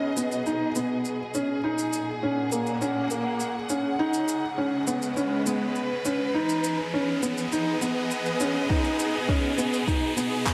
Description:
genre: piano and strings electronica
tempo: 102 BPM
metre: 4/4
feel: straight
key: B major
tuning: A4 = 444 Hz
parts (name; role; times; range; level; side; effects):
- warm studio string section; sustained chords; 0.0-10.5 s; A#2 to F#5; -32 LUFS; equal; sidechain pumping
- felt-muted upright piano; riff; 0.0-10.5 s; A#3 to D#4; -29 LUFS; equal; tape echo
- warm sub bass; bass; 0.0-10.5 s; F#1 to E2; -58 LUFS; equal; none
- riser; sound effects; 3.6-10.5 s; none; -39 LUFS; equal; none
- electronic shaker and handclaps; drums; 0.2-10.5 s; none; -36 LUFS; equal; high-pass filter on perc, high-pass filter on snare, high-pass filter on room
- electronic kick drum; drums; 8.7-10.5 s; none; -29 LUFS; equal; none
room: wet lush hall reverb, RT60 1.6 s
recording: none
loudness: -27 LUFS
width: mono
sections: 0.0-10.5 A section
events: build-up 0.0-10.5; riser 3.6-10.5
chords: 0.0 B6; 1.6 F#; 4.0 C#m7; 6.3 Emaj7; 8.7 B6

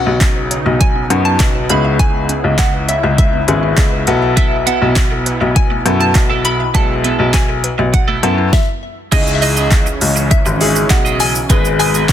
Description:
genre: dance-pop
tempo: 101 BPM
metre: 4/4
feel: straight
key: C# minor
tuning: A4 = 441 Hz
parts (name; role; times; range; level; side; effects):
- hollow square pluck; melody; 0.0-12.1 s; D#5 to B5; -21 LUFS; equal; chorus, digital delay
- bright concert grand piano; accompaniment; 0.0-12.1 s; G#3 to B4; -20 LUFS; left 2 dB; sidechain pumping
- filtered supersaw swell; sustained chords; 0.0-12.1 s; B2 to E4; -24 LUFS; right 2 dB; sidechain pumping
- mallet-like synth pluck; arpeggios; 0.0-8.5 s; F#3 to E5; -27 LUFS; right 4 dB; none
- warm baby grand piano; bass; 0.1-12.1 s; G#1 to F#2; -16 LUFS; left 2 dB; sidechain pumping
- smooth R&B drum kit; drums; 0.2-12.1 s; crash cymbal, handclaps, hi-hat, kick drum, shaker, snare drum; -14 LUFS; equal; none
- twelve-string electric guitar; riff; 4.4-12.1 s; B3 to D#5; -22 LUFS; right 7 dB; analog chorus
room: little or no reverb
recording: dense, heavily limited modern master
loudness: -11 LUFS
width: side -10 dB against mid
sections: 0.0-9.1 A section; 9.1-12.1 B section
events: stop 8.5-9.1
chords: 0.0 Badd9; 1.7 C#m7; 4.1 B7sus4; 9.1 C#madd9; 11.5 G#m

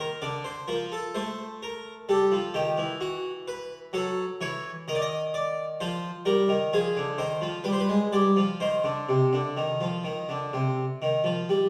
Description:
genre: classical, baroque-style two-part invention for harpsichord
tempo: 64 BPM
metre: 4/4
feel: straight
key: C minor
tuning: A4 = 440 Hz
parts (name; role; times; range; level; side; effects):
- harpsichord; solo; 0.0-11.7 s; C3 to Eb5; -28 LUFS; equal; none
room: wet recital hall reverb, RT60 1.4 s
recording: heard from further back in the room, studio reverb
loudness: -28 LUFS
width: mono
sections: 0.0-11.7 A section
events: none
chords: 0.0 Bbmaj9; 1.2 Adim; 3.0 A/E; 4.9 Eb; 6.7 Fm; 7.7 G; 8.6 Cm

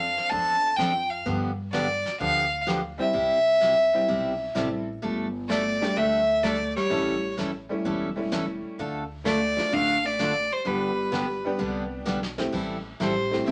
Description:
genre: country, western swing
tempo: 128 BPM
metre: 4/4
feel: swing 69% on 8ths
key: unclear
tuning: A4 = 440 Hz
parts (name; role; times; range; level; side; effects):
- clear fiddle; melody; 0.0-13.5 s; B4 to A5; -26 LUFS; equal; none
- tack piano; accompaniment; 0.0-13.5 s; F3 to A4; -33 LUFS; equal; none
- upright bass; bass; 0.0-13.5 s; E1 to G2; -40 LUFS; equal; none
- vintage brush drum kit; drums; 0.2-13.5 s; brushed snare drum, crash cymbal, hi-hat, kick drum, snare drum; -41 LUFS; equal; none
- picked steel-string acoustic guitar; accompaniment; 0.3-13.5 s; C3 to A4; -32 LUFS; equal; none
- vintage hollow-body jazz guitar; second line; 5.5-13.5 s; G3 to D4; -31 LUFS; equal; none
room: moderate small room reverb, RT60 0.5 s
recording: none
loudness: -26 LUFS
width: mono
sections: 0.0-13.5 A section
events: drum fill 12.1-12.5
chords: 0.0 F6; 1.3 G7; 3.1 C; 5.0 Gsus2; 6.9 A7; 8.8 Dm; 10.7 G; 12.5 Am7

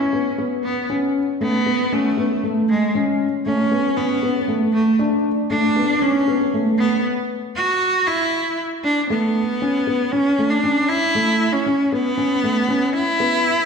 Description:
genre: electronica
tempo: 117 BPM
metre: 4/4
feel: straight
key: unclear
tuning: A4 = 441 Hz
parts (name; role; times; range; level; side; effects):
- clear cello; melody; 0.0-13.7 s; G#3 to F#4; -20 LUFS; equal; low-pass filter
- felt-muted upright piano; riff; 0.1-13.5 s; A3 to D4; -20 LUFS; equal; none
room: wet recital hall reverb, RT60 1.6 s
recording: none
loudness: -17 LUFS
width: side -5 dB against mid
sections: 0.0-9.1 A section; 9.1-13.7 B section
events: build-up 0.0-9.1; break 7.0-9.1; drop 9.1-13.7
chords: 0.0 Aadd9; 5.0 D5; 9.1 Aadd9

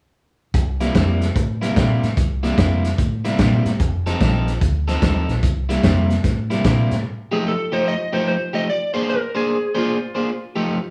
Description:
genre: electric blues shuffle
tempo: 148 BPM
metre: 4/4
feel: swing 66% on 8ths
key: unclear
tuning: A4 = 442 Hz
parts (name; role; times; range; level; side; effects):
- vintage muted fingered electric bass; bass; 0.5-7.0 s; F1 to Bb2; -23 LUFS; equal; none
- crunchy breakbeat drum kit; drums; 0.5-7.0 s; hi-hat, kick drum, snare drum; -22 LUFS; equal; none
- electric guitar at the edge of break-up; riff; 0.8-10.8 s; C3 to C5; -24 LUFS; equal; none
- electric slide guitar; melody; 7.3-10.5 s; F4 to Eb5; -25 LUFS; equal; none
room: moderate large studio reverb, RT60 0.9 s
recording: band playing live in one room, small room ambience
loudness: -20 LUFS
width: mono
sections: 0.5-7.0 A section; 7.0-10.9 B section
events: none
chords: 0.5 C7; 3.8 F7; 5.4 C7; 7.0 F9; 8.7 Bb9; 10.3 F9

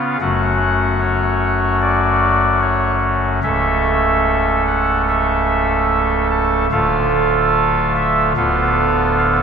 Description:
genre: classical, chorale-style piece for pipe organ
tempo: 74 BPM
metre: 4/4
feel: rubato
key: F# minor, A major from 3.4 s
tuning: A4 = 440 Hz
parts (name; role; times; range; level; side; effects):
- pipe organ, soft reed; solo; 0.0-9.4 s; C#1 to A5; -14 LUFS; equal; none
room: wet church reverb, RT60 3.5 s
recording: minimal, uncompressed stereo recording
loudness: -14 LUFS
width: side -6 dB against mid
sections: 0.0-9.4 A section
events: none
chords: 0.2 F#m; 3.4 A/C#; 6.7 Dm; 8.4 Bm7b5/D

